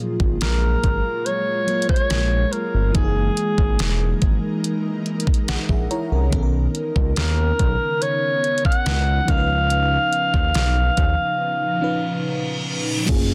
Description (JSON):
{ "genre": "contemporary R&B", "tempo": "71 BPM", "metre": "4/4", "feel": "straight", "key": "F# major", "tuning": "A4 = 439 Hz", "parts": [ { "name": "FM electric piano with soft pad layer", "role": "accompaniment", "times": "0.0-13.3 s", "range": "D#3 to A#5", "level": "-30 LUFS", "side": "equal", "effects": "chorus" }, { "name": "ethereal airy pad", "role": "sustained chords", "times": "0.0-13.3 s", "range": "A#2 to A#4", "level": "-31 LUFS", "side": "equal", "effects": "ensemble chorus, built-in reverb" }, { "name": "smooth gliding synth bass", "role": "bass", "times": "0.2-13.3 s", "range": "E1 to D#2", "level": "-23 LUFS", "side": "equal", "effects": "none" }, { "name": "pop drum kit", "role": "drums", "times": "0.2-13.3 s", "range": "crash cymbal, hi-hat, kick drum, snare drum", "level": "-24 LUFS", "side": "equal", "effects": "overdrive" }, { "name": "breathy alto saxophone", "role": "melody", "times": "0.4-12.2 s", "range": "G#4 to F#5", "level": "-25 LUFS", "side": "equal", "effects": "digital delay" }, { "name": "reverse cymbal and downlifter", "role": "sound effects", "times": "11.8-13.3 s", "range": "none", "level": "-30 LUFS", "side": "equal", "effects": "none" } ], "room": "little or no reverb", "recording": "dense, heavily limited modern master", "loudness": "-20 LUFS", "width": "mono", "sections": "0.0-13.1 A section", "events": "FM electric piano fill 5.1-6.3; break 11.4-13.1; reverse cymbal 11.8-13.1", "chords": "0.0 F#maj9; 2.9 F#13; 6.3 Bmaj9; 9.3 C#9" }